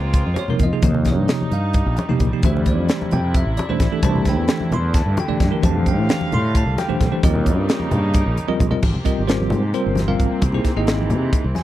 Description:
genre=electric jazz fusion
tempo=263 BPM (eighths)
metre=7/8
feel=straight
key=unclear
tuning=A4 = 440 Hz
part: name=bell-like tine electric piano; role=accompaniment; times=0.0-11.6 s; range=C3 to C6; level=-22 LUFS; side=right 1 dB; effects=medium stereo tremolo
part: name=rich chamber string section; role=sustained chords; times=0.0-11.6 s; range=C3 to F5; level=-28 LUFS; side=right 1 dB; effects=none
part: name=fretless electric bass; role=bass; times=0.0-11.5 s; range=G1 to C3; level=-21 LUFS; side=equal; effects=none
part: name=crisp fusion drum kit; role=drums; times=0.1-11.6 s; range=crash cymbal, hi-hat, kick drum, snare drum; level=-20 LUFS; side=equal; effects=none
part: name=congas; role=percussion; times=0.3-11.6 s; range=none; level=-26 LUFS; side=left 1 dB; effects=none
room=little or no reverb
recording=dry, close 1970s-style studio recording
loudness=-16 LUFS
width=side -14 dB against mid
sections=0.0-8.8 A section; 8.8-11.6 B section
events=drum fill 8.4-8.8; tine electric piano fill 11.3-11.6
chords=0.0 Bbm9; 0.8 Eb7; 2.4 Dm11; 4.0 C69; 5.6 F69; 7.2 Eb7; 8.8 Abmaj9; 10.4 C7alt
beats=0.15 0.38 0.60 | 0.83 1.06 1.29 1.52 1.75 1.98 2.21 | 2.44 2.66 2.89 3.12 3.35 3.58 3.81 | 4.04 4.26 4.49 4.72 4.95 5.18 5.41 | 5.63 5.86 6.09 6.32 6.55 6.78 7.00 | 7.23 7.46 7.69 7.91 8.14 8.37 8.60 | 8.82 9.05 9.28 9.51 9.74 9.96 10.19 | 10.42 10.65 10.87 11.10 11.33 11.56

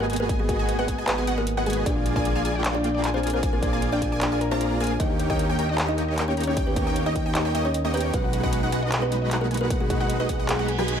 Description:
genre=future bass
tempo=153 BPM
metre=4/4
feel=half-time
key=unclear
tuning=A4 = 441 Hz
part: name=kalimba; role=melody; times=0.0-11.0 s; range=F#3 to D#5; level=-28 LUFS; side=equal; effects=sidechain pumping, ping-pong delay
part: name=wide unison pluck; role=arpeggios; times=0.0-11.0 s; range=D#5 to A#5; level=-35 LUFS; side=equal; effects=sidechain pumping, ping-pong delay
part: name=wide unison pluck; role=arpeggios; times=0.0-10.8 s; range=E#4 to A#5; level=-36 LUFS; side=left 4 dB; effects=sidechain pumping, ping-pong delay
part: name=dense compressed supersaw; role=riff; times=0.0-11.0 s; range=G#3 to A#5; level=-28 LUFS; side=right 1 dB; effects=sidechain pumping
part: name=fat analog bass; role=bass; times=0.0-11.0 s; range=G#1 to D#2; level=-28 LUFS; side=equal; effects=tube saturation, sidechain pumping
part: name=impact and reverse cymbal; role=sound effects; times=0.0-0.3, 10.6-11.0 s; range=none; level=-37 LUFS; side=right 4 dB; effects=none
part: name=trap drum kit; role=drums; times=0.1-11.0 s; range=handclaps, hi-hat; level=-30 LUFS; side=equal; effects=none
part: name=electronic kick drum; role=drums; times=0.3-10.4 s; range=none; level=-27 LUFS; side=equal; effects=none
room=light reverb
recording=none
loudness=-22 LUFS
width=side -8 dB against mid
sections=0.0-11.0 A section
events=impact 0.0; reverse cymbal 10.6-11.0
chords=0.0 G#m7; 1.9 A#7; 5.0 D#7; 8.1 B6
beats=| 0.29 0.69 1.08 1.47 | 1.86 2.25 2.65 3.04 | 3.43 3.82 4.21 4.61 | 5.00 5.39 5.78 6.17 | 6.57 6.96 7.35 7.74 | 8.14 8.53 8.92 9.31 | 9.71 10.10 10.49 10.88

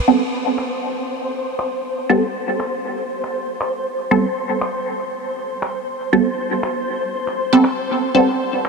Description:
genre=dub techno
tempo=119 BPM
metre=4/4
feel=swing 55% on 16ths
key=A minor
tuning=A4 = 440 Hz
part: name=flickering grainy texture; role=texture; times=0.0-8.7 s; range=C5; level=-24 LUFS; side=left 1 dB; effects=built-in reverb
part: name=filtered dub chord stab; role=stabs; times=0.1-8.3 s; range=G3 to A4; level=-19 LUFS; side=right 2 dB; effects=phaser, dub echo
part: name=electronic finger snaps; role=drums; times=0.6-8.7 s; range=none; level=-30 LUFS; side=equal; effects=overdrive, low-pass filter on hats, low-pass filter on snare, low-pass filter on room, dub echo
room=wet huge ambient reverb, RT60 8.9 s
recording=none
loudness=-18 LUFS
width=side -4 dB against mid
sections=0.1-8.7 A section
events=none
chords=0.1 Am9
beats=| 0.08 0.58 1.09 1.59 | 2.09 2.60 3.10 3.61 | 4.11 4.62 5.12 5.62 | 6.13 6.63 7.14 7.64 | 8.14 8.65

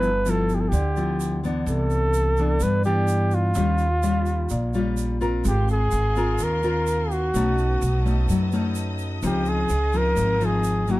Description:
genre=bossa nova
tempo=127 BPM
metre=4/4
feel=straight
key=Ab major from 5.4 s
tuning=A4 = 445 Hz
part: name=warm flugelhorn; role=melody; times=0.0-11.0 s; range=F4 to B4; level=-25 LUFS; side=equal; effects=plate reverb
part: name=nylon-string guitar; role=accompaniment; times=0.0-11.0 s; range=G2 to Bb4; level=-25 LUFS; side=left 2 dB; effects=none
part: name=upright bass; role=bass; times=0.0-11.0 s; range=G1 to G2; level=-24 LUFS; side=right 1 dB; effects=none
part: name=tube shaker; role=percussion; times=0.0-11.0 s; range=none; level=-40 LUFS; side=right 9 dB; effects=none
part: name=rich studio string section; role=sustained chords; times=5.5-11.0 s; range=Bb4 to D#6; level=-38 LUFS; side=left 1 dB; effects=none
room=light reverb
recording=dark, warm production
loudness=-20 LUFS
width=side -17 dB against mid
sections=0.0-5.4 A section; 5.4-11.0 B section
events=none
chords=0.0 G6; 1.7 Cmaj9; 3.6 Eb9; 5.4 Ab69; 7.3 B9; 9.2 Dbmaj9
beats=0.25 0.72 1.20 | 1.67 2.14 2.61 3.08 | 3.56 4.03 4.50 4.97 | 5.44 5.92 6.39 6.86 | 7.33 7.80 8.28 8.75 | 9.22 9.70 10.17 10.64

